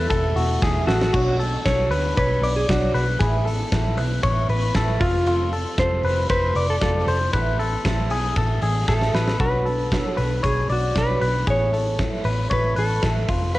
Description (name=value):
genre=jangly indie pop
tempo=116 BPM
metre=4/4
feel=straight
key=A major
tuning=A4 = 440 Hz
part: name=mellow electric guitar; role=melody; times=0.0-13.6 s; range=F4 to C#5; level=-25 LUFS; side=equal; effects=cassette tape
part: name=fingerpicked steel-string acoustic guitar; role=accompaniment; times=0.0-13.6 s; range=E2 to C#5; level=-30 LUFS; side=right 5 dB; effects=cassette tape
part: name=direct-recorded clean electric guitar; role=arpeggios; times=0.0-13.6 s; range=F4 to D5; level=-26 LUFS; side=left 3 dB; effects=cassette tape, tape echo
part: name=vintage muted picked electric bass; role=bass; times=0.0-13.6 s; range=E1 to D2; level=-23 LUFS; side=equal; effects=none
part: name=big rock drum kit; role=drums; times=0.1-13.6 s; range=crash cymbal, hi-hat, kick drum, ride cymbal, snare drum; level=-26 LUFS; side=equal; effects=cassette tape
room=small room ambience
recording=home recording on cassette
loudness=-19 LUFS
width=side -17 dB against mid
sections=0.0-1.1 A section; 1.1-9.4 B section; 9.4-13.6 C section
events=drum fill 0.6-1.1, 8.9-9.4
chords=0.0 Esus4; 1.1 Bmadd9; 3.2 Asus2; 5.0 F; 7.3 Asus2; 9.4 Bmadd9; 11.5 Asus2